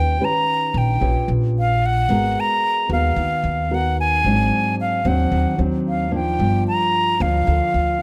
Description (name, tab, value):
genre	bossa nova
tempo	112 BPM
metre	4/4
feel	straight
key	unclear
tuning	A4 = 440 Hz
part	breathy silver concert flute	melody	0.0-8.0 s	F5 to Bb5	-23 LUFS	equal	none
part	nylon-string guitar	accompaniment	0.0-8.0 s	G2 to Cb5	-25 LUFS	equal	none
part	upright bass	bass	0.0-8.0 s	G1 to Eb2	-23 LUFS	equal	none
room	light reverb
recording	close, detailed microphones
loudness	-19 LUFS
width	mono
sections	0.0-8.0 A section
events	none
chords	0.0 Eb7b13; 2.1 Abm9; 4.2 Ab7#11; 6.4 Gm7